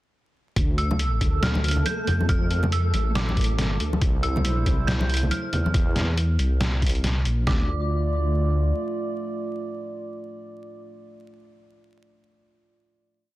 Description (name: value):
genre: deep dubstep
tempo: 139 BPM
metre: 4/4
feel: swing 59% on 16ths, half-time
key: D minor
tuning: A4 = 440 Hz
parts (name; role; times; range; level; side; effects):
- dark detuned saw bass; bass; 0.6-8.7 s; A1 to F2; -23 LUFS; equal; none
- trip hop sampler-style drum kit; drums; 0.6-7.6 s; kick drum, snare drum; -23 LUFS; equal; none
- trip hop sampler-style drum kit; drums; 0.6-7.4 s; hi-hat, snare drum; -28 LUFS; equal; none
- flickering grainy texture; texture; 1.0-5.8 s; A3 to A4; -36 LUFS; right 1 dB; built-in reverb
- dark detuned synth bell; melody; 0.8-10.9 s; D6 to G6; -32 LUFS; right 2 dB; chorus, tremolo, dub echo
- congas; percussion; 0.9-5.7 s; none; -30 LUFS; left 1 dB; none
- dark analog pad; sustained chords; 4.0-10.9 s; G3 to D5; -32 LUFS; right 2 dB; chorus
room: light reverb, digital ambience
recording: dense, heavily limited modern master, vinyl crackle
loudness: -21 LUFS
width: side -17 dB against mid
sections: 0.6-7.5 drop; 7.5-10.9 final chord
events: drop 0.6-7.5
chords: 0.6 Dm; 4.0 C; 7.5 Dm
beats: | 0.56 0.99 1.43 1.86 | 2.29 2.72 3.15 3.58 | 4.01 4.45 4.88 5.31 | 5.74 6.17 6.61 7.04 | 7.47 7.90 8.33 8.76 | 9.20 9.63 10.06 10.49